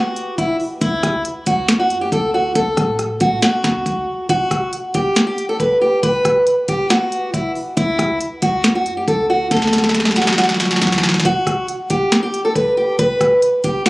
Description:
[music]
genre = hip hop, trap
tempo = 138 BPM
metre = 4/4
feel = half-time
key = E minor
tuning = A4 = 440 Hz
[part]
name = fingerpicked steel-string acoustic guitar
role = melody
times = 0.0-13.9 s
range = E4 to B4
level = -17 LUFS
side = equal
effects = digital delay
[part]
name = clean 808-style bass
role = bass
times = 0.0-13.9 s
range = E1 to A2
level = -27 LUFS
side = equal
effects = none
[part]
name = trap drum kit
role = drums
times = 0.2-13.9 s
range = finger snaps, hi-hat, kick drum, rim click, snare drum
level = -18 LUFS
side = equal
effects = vintage 12-bit sampler grit
[sound]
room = digital ambience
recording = recorded on a phone in the room, club reverb, compression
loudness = -14 LUFS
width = side -20 dB against mid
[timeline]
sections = 0.0-11.2 A section; 11.2-13.9 A section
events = drum fill 9.5-11.2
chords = 0.0 E5; 0.8 D; 4.3 E5; 7.8 D; 11.2 E5

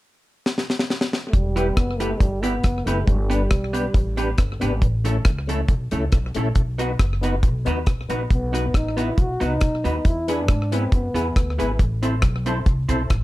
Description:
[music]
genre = ska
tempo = 138 BPM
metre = 4/4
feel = swing 53% on 8ths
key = E minor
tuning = A4 = 439 Hz
[part]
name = deep reggae drum kit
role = drums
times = 0.5-13.2 s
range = hi-hat, kick drum, rim click, snare drum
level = -20 LUFS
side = equal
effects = slapback echo
[part]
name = dark trombone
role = melody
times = 1.3-4.4, 8.3-11.6 s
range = G3 to F#4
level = -26 LUFS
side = equal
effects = slapback echo
[part]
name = upright bass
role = bass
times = 1.3-13.2 s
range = E1 to G#2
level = -24 LUFS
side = equal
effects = none
[part]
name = vintage hollow-body jazz guitar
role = accompaniment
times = 1.6-13.0 s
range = A3 to C5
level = -27 LUFS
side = right 4 dB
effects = none
[part]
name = tonewheel organ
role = stabs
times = 1.6-13.0 s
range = A3 to C5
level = -28 LUFS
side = left 4 dB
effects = chorus vibrato, slow rotary speaker, slapback echo
[sound]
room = light reverb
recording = dark, warm production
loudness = -19 LUFS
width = side -17 dB against mid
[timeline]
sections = 0.0-1.3 A section; 1.3-13.2 B section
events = drum fill 0.5-1.3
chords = 0.0 N.C.; 1.3 Em; 3.1 G; 4.8 A; 6.6 B; 10.1 E; 11.8 Am

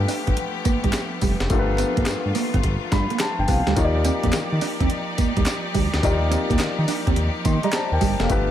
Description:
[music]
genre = R&B, new jack swing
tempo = 106 BPM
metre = 4/4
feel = swing 66% on 16ths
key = unclear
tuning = A4 = 444 Hz
[part]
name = dark concert grand piano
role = accompaniment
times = 0.0-8.5 s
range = A3 to C6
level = -26 LUFS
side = left 3 dB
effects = none
[part]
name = bright studio string section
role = sustained chords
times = 0.0-8.5 s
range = F3 to D5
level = -29 LUFS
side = left 1 dB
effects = none
[part]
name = smooth synth bass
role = bass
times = 0.0-8.5 s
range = F1 to Eb3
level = -24 LUFS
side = equal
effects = none
[part]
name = mellow electric guitar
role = riff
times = 0.1-8.5 s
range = G3 to D4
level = -27 LUFS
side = right 6 dB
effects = ensemble chorus
[part]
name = breakbeat sampler-style drum kit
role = drums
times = 0.1-8.5 s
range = handclaps, hi-hat, kick drum, snare drum, tambourine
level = -24 LUFS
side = equal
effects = none
[part]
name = group handclap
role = percussion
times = 0.9-7.9 s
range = none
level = -40 LUFS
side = right 4 dB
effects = none
[sound]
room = small room reverb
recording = none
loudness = -19 LUFS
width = side -11 dB against mid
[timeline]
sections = 0.0-8.5 A section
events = grand piano fill 2.6-3.8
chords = 0.0 G9; 3.8 Ebmaj9

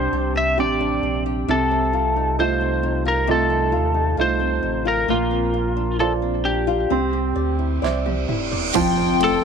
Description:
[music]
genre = pop ballad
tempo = 66 BPM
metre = 4/4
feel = straight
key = F major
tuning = A4 = 439 Hz
[part]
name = lightly driven lead guitar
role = melody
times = 0.0-9.4 s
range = F4 to E5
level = -22 LUFS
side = left 1 dB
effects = none
[part]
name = clear baby grand piano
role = accompaniment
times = 0.0-9.4 s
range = C3 to E5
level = -24 LUFS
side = right 13 dB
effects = none
[part]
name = flamenco guitar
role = arpeggios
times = 0.0-9.4 s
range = F2 to D5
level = -26 LUFS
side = left 14 dB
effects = none
[part]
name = warm sub bass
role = bass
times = 0.0-9.4 s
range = E1 to Eb2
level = -25 LUFS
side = equal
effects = none
[part]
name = reverse cymbal and impact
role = sound effects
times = 8.0-9.4 s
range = none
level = -30 LUFS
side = right 4 dB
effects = none
[part]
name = pop drum kit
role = drums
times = 7.9-9.4 s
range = crash cymbal, kick drum, ride cymbal, snare drum, toms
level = -28 LUFS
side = right 6 dB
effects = none
[part]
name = warm studio violin section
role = second line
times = 8.7-9.4 s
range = G5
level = -22 LUFS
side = left 15 dB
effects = none
[part]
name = shimmering ambient pad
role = sustained chords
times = 9.3-9.4 s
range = F4 to A5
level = -31 LUFS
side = right 2 dB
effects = none
[part]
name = tambourine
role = percussion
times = 8.7-9.0 s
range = none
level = -33 LUFS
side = right 17 dB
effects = none
[sound]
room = small room ambience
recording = 1960s-style stereo with parts hard left and right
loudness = -18 LUFS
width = side -6 dB against mid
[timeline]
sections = 0.0-8.8 A section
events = drum fill 7.8-8.8; reverse cymbal 8.0-8.8; impact 8.8-9.4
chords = 0.0 Csus2; 1.5 F7/C; 5.1 Bbadd9; 6.9 Cadd9; 8.8 Fadd9

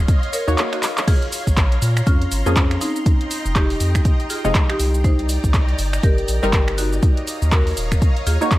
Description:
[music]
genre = deep house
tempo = 121 BPM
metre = 4/4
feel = swing 59% on 16ths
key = Bb minor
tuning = A4 = 440 Hz
[part]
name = soft string machine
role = sustained chords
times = 0.0-8.6 s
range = Db5 to C6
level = -30 LUFS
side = equal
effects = ensemble chorus, sidechain pumping
[part]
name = round analog bass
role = bass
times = 0.0-8.4 s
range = Eb1 to Bb2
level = -20 LUFS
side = equal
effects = sidechain pumping
[part]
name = deep house drum kit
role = drums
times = 0.1-8.6 s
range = crash cymbal, finger snaps, handclaps, hi-hat, shaker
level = -25 LUFS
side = equal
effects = overdrive, studio reverb
[part]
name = electronic kick drum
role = drums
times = 0.1-8.6 s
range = none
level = -16 LUFS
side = equal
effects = studio reverb
[part]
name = marimba with medium hard mallets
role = melody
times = 0.3-8.6 s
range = C4 to Eb5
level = -26 LUFS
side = equal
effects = tape echo
[part]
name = filtered dub chord stab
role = stabs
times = 0.5-8.6 s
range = C3 to Db5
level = -23 LUFS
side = left 1 dB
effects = wide subtle chorus, sidechain pumping
[sound]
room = little or no reverb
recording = vinyl crackle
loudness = -16 LUFS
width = side -17 dB against mid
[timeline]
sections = 0.0-8.6 A section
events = drum fill 0.8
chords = 0.0 Ebm7; 1.1 Bbm7; 2.8 Fm7; 4.8 Cm7; 7.0 Ebm7

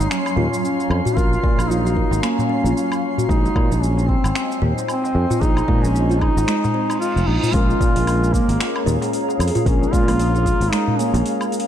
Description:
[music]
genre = organic downtempo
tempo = 113 BPM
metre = 4/4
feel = swing 57% on 16ths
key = Bb minor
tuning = A4 = 441 Hz
[part]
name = mellow duduk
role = melody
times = 0.0-11.5 s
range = Bb3 to F4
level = -23 LUFS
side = equal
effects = ping-pong delay
[part]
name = granular cloud pad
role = sustained chords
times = 0.0-11.7 s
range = Gb3 to Bb5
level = -26 LUFS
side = equal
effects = built-in reverb, sidechain pumping
[part]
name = sustaining fretless electric bass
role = bass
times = 0.0-11.2 s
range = F1 to Bb2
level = -20 LUFS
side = equal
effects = sidechain pumping
[part]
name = afro-pop drum kit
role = drums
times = 0.0-11.7 s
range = cabasa, finger snaps, hi-hat, woodblock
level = -29 LUFS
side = equal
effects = none
[part]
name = darbuka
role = percussion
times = 0.0-11.2 s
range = none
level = -27 LUFS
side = left 2 dB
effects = none
[part]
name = twinkling granular texture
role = texture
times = 0.0-7.6 s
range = C6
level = -34 LUFS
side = equal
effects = built-in reverb
[part]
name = kalimba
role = arpeggios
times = 0.4-11.2 s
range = Ab3 to Bb4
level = -25 LUFS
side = right 2 dB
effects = ping-pong delay
[part]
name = electronic kick drum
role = drums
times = 1.2-10.6 s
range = none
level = -20 LUFS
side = equal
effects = overdrive
[part]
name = reverse cymbal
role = sound effects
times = 7.0-7.5 s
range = none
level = -31 LUFS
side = right 4 dB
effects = none
[part]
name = muted felt-like synth keys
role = accompaniment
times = 7.5-11.7 s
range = Ab3 to Bb4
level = -27 LUFS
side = left 5 dB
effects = chorus, sidechain pumping, ping-pong delay
[sound]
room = light reverb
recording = dark, warm production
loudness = -16 LUFS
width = side -10 dB against mid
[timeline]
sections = 0.0-7.5 A section; 7.5-11.7 B section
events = reverse cymbal 7.0-7.5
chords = 0.0 Gbmaj7; 3.3 Fm7; 7.5 Bbm7

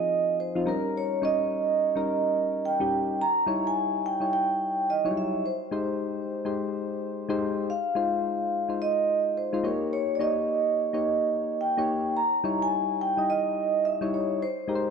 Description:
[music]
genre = R&B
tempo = 107 BPM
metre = 4/4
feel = swing 62% on 16ths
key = unclear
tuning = A4 = 440 Hz
[part]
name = vibraphone with soft mallets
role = melody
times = 0.0-14.9 s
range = Bb4 to Bb5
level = -26 LUFS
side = right 2 dB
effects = none
[part]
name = soft electric-piano-like synth keys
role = accompaniment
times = 0.0-14.9 s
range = F3 to Eb5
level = -29 LUFS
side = left 3 dB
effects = chorus
[sound]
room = wet plate reverb, RT60 2.9 s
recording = dark, warm production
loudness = -24 LUFS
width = side -6 dB against mid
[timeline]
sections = 0.0-14.9 A section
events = none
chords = 0.0 Fm7; 0.7 Eb7; 3.2 Eb7b9; 5.4 Abmaj7; 7.7 Fm7; 9.6 Eb7; 12.2 Eb7b9

